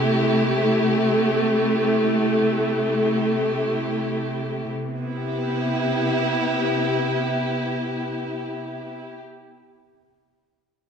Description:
ambient; free time; C major; A4 = 439 Hz
rich chamber string section; sustained chords; 0.0-9.2 s; C3 to G4; -20 LUFS; equal
wet concert hall reverb, RT60 2.2 s; -20 LUFS; side -7 dB against mid
0.0-4.7 A section; 4.7-8.8 B section
0.0 Am7; 4.7 Cmaj7

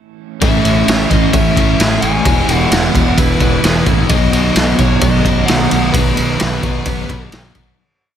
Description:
rock, shoegaze and dream pop; 130 BPM; 4/4; straight; A4 = 437 Hz
fuzz lead guitar; melody; 0.4-7.3 s; B4 to G#5; -21 LUFS; left 3 dB; distortion, slapback echo
twangy electric guitar; arpeggios; 0.4-7.8 s; E3 to G#4; -25 LUFS; right 5 dB; analog chorus, slapback echo
overdriven semi-hollow guitar; riff; 0.4-7.8 s; A2 to E4; -19 LUFS; right 11 dB; reverse reverb
thick fuzz guitar; riff; 0.4-7.8 s; E2 to B3; -18 LUFS; left 11 dB; distortion, ensemble chorus
fuzz fingered electric bass; bass; 0.4-7.7 s; E1 to B1; -18 LUFS; equal; overdrive
raw garage drum kit; drums; 0.4-7.7 s; kick drum, ride cymbal, snare drum; -15 LUFS; equal
small room ambience; -11 LUFS; side -9 dB against mid
0.4-7.8 verse
fade-out 5.9-7.8
0.4 Amaj7; 2.2 Eadd9; 4.1 B

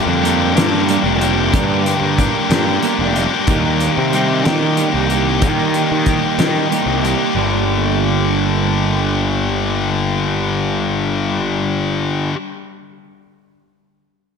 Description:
quiet-loud alternative rock; 62 BPM (dotted quarters); 6/8; straight; G minor; A4 = 439 Hz
twelve-string electric guitar; arpeggios; 0.0-12.4 s; G2 to Bb4; -20 LUFS; right 7 dB; lush chorus, digital delay, slapback echo
heavy high-gain guitar; riff; 0.0-12.4 s; G2 to G4; -18 LUFS; left 6 dB; distortion, slapback echo
fuzz picked electric bass; bass; 0.1-12.3 s; F1 to Eb3; -20 LUFS; equal; overdrive
loose indie drum kit; drums; 0.3-7.2 s; hi-hat, kick drum, snare drum; -20 LUFS; left 1 dB
wet lush hall reverb, RT60 2.3 s; big arena sound; -14 LUFS; side -6 dB against mid
0.0-7.4 A section; 7.4-11.2 B section
0.0 Gm; 3.5 Eb; 7.4 Gm

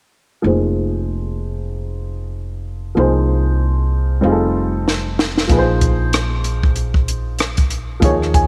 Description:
hip hop, jazz-hop; 95 BPM; 4/4; swing 59% on 16ths; F minor; A4 = 440 Hz
dark upright piano; accompaniment; 0.4-8.5 s; F3 to Ab5; -22 LUFS; equal; low-pass filter
upright bass; bass; 0.4-8.5 s; F1 to Eb2; -22 LUFS; equal
compact cocktail drum kit; drums; 4.9-8.5 s; hi-hat, kick drum, rim click, snare drum; -20 LUFS; equal
light reverb, studio reverb; -18 LUFS; mono
0.4-8.5 A section
filter sweep on upright piano 0.4-8.5; drum fill 4.9-5.5
0.4 Fm7; 3.0 Ab69/C; 4.2 F7; 5.5 Bbsus2

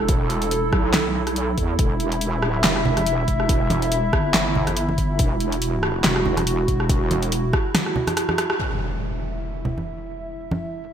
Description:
deep dubstep; 141 BPM; 4/4; swing 56% on 16ths, half-time; E minor; A4 = 441 Hz
dark analog pad; sustained chords; 0.0-10.9 s; E4 to E5; -25 LUFS; right 2 dB; chorus
wobble bass; bass; 0.0-7.5 s; E1 to E2; -24 LUFS; equal; chorus
deep house drum kit; drums; 0.1-8.6 s; handclaps, hi-hat, rim click, snare drum; -23 LUFS; equal; gated reverb
electronic kick drum; drums; 0.1-7.6 s; -22 LUFS; equal
congas; percussion; 2.9-10.6 s; -27 LUFS; right 1 dB
impact; sound effects; 8.6-10.3 s; -29 LUFS; equal
light reverb; bright 1980s-style digital production; -19 LUFS; side -9 dB against mid
0.0-8.6 A section; 8.6-10.9 B section
drop 0.0-8.6; drum fill 7.7-8.6; band accent 8.5; impact 8.6-10.3
0.0 Emadd9; 8.6 N.C.

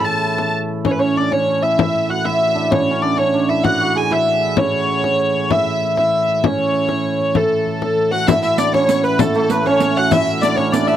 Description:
medieval dance; 130 BPM (dotted quarters); 6/8; straight; A major; A4 = 440 Hz
warm hurdy-gurdy; melody; 0.0-11.0 s; A4 to A5; -17 LUFS; equal
hammered dulcimer; second line; 0.0-11.0 s; A3 to A4; -21 LUFS; right 5 dB
rich fiddle; second line; 0.0-0.5, 8.1-11.0 s; A4 to A5; -24 LUFS; left 6 dB
pipe organ, sparkling flutes; drone; 0.0-11.0 s; A2 to E3; -24 LUFS; left 2 dB
frame drum; percussion; 0.4-11.0 s; -20 LUFS; left 7 dB
riq; percussion; 8.3-11.0 s; -22 LUFS; right 7 dB
light reverb; dry, close 1970s-style studio recording; -14 LUFS; side -11 dB against mid
0.8-8.3 A section; 8.3-11.0 B section

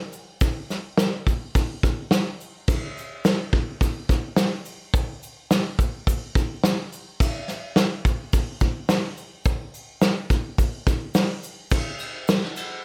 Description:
rock; 106 BPM; 4/4; straight
soft brush drum kit; drums; 0.1-12.7 s; crash cymbal, hi-hat, kick drum, ride cymbal, snare drum; -24 LUFS; equal
egg shaker; percussion; 0.1-12.7 s; -45 LUFS; equal
light reverb; -24 LUFS; mono
0.0-11.7 A section; 11.7-12.8 B section

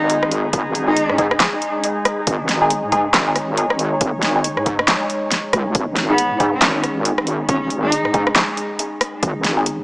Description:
deep dubstep; 138 BPM; 4/4; swing 59% on 16ths, half-time; A4 = 435 Hz
rich cello; melody; 0.0-1.2, 6.1-8.1 s; B3 to D#4; -23 LUFS; equal; dub echo
deep dark ambient pad; sustained chords; 0.0-9.8 s; G#3 to C#5; -24 LUFS; equal; chorus, built-in reverb
wobble bass; bass; 0.0-9.8 s; G#1 to G#2; -23 LUFS; equal; chorus
deep house drum kit; drums; 0.1-9.8 s; handclaps, hi-hat, rim click, snare drum; -18 LUFS; equal; overdrive
electronic kick drum; drums; 0.5-9.3 s; -24 LUFS; equal; overdrive
filtered dub chord stab; stabs; 0.9-9.6 s; G#3 to G#4; -23 LUFS; equal; phaser, lush chorus, dub echo
moderate echo chamber reverb, RT60 1.6 s; small speaker sound; -16 LUFS; side -25 dB against mid
0.0-9.8 A section
0.0 G#5

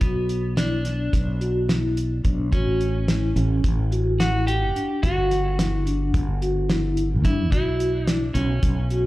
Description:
progressive instrumental, band music in an uneven meter; 216 BPM (eighths); 9/8; straight; B minor; A4 = 437 Hz
clean electric guitar; second line; 0.0-9.1 s; B3 to G4; -30 LUFS; right 2 dB; tape echo, slapback echo
vibraphone with soft mallets; arpeggios; 0.0-9.1 s; C#4 to F#4; -27 LUFS; left 1 dB
fretless electric bass; bass; 0.0-9.1 s; G1 to G2; -23 LUFS; equal
damped 70s drum kit; drums; 0.0-9.0 s; hi-hat, kick drum, snare drum; -24 LUFS; equal
small room ambience; live gig heard through the venue's PA, club reverb; -20 LUFS; side -17 dB against mid
0.0-9.1 A section
0.0 Bm; 2.5 A6; 5.0 G5; 7.5 Bsus2

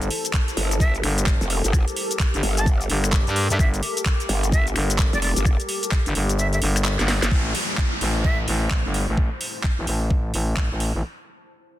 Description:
bass house; 129 BPM; 4/4; swing 62% on 16ths; A phrygian; A4 = 440 Hz
dark analog pad; sustained chords; 0.0-11.0 s; A3 to C5; -33 LUFS; equal; chorus, sidechain pumping
growling FM bass; bass; 0.0-11.0 s; G1 to G2; -23 LUFS; equal; tube saturation, sidechain pumping
garage drum kit; drums; 0.0-10.9 s; cabasa, finger snaps, handclaps, hi-hat, snare drum; -26 LUFS; equal
granular cloud pad; texture; 0.0-11.0 s; E4 to A5; -36 LUFS; left 3 dB; built-in reverb, sidechain pumping
electronic kick drum; drums; 0.3-10.7 s; -20 LUFS; equal
growl bass; bass; 0.6-7.3 s; F1 to G1; -23 LUFS; equal; chorus, overdrive, sidechain pumping
breathy bright jazz flute; melody; 0.8-8.4 s; D5 to A5; -29 LUFS; right 1 dB; digital delay
downlifter; sound effects; 7.3-11.0 s; -30 LUFS; equal
digital ambience; dense, heavily limited modern master; -19 LUFS; side -14 dB against mid
0.0-7.3 A section; 7.3-11.0 B section
drop 0.0-7.3; kick drops out 6.4-7.3; drum fill 7.0-7.3; filter sweep on FM bass 7.3-11.0
0.0 Gmadd9; 7.3 Am

